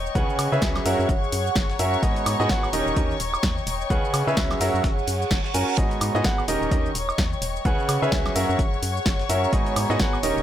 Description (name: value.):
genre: piano house.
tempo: 128 BPM.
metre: 4/4.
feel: swing 58% on 16ths.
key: G# minor.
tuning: A4 = 440 Hz.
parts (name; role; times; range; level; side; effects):
dark chamber string section; sustained chords; 0.0-10.4 s; C#5 to C#6; -31 LUFS; left 5 dB; sidechain pumping.
organ-like FM bass; bass; 0.0-10.4 s; D#1 to C#3; -28 LUFS; equal; tube saturation, sidechain pumping.
warbly tape-like pad; texture; 0.0-10.4 s; G#4 to A#5; -31 LUFS; right 2 dB; chorus, built-in reverb, sidechain pumping.
punchy analog drum machine; drums; 0.1-10.4 s; hi-hat, shaker, snare drum, woodblock; -28 LUFS; equal; none.
clear grand piano; riff; 0.2-10.4 s; G#2 to G#5; -25 LUFS; right 1 dB; sidechain pumping.
breakbeat sampler-style drum kit; drums; 0.2-10.4 s; hi-hat, snare drum; -37 LUFS; right 1 dB; none.
electronic kick drum; drums; 0.2-10.1 s; none; -25 LUFS; equal; none.
reverse cymbal; sound effects; 5.1-5.8 s; none; -32 LUFS; right 7 dB; none.
room: light reverb.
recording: none.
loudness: -20 LUFS.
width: side -11 dB against mid.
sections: 0.0-10.4 A section.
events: reverse cymbal 5.1-5.8.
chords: 0.2 C#m7; 0.9 F#7; 2.0 G#m7; 2.7 D#7; 3.9 C#m7; 4.6 F#7; 5.8 G#m7; 6.5 D#7; 7.7 C#m7; 8.4 F#7; 9.5 G#m7.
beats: | 0.15 0.62 1.09 1.56 | 2.03 2.50 2.97 3.44 | 3.90 4.37 4.84 5.31 | 5.78 6.25 6.72 7.18 | 7.65 8.12 8.59 9.06 | 9.53 10.00.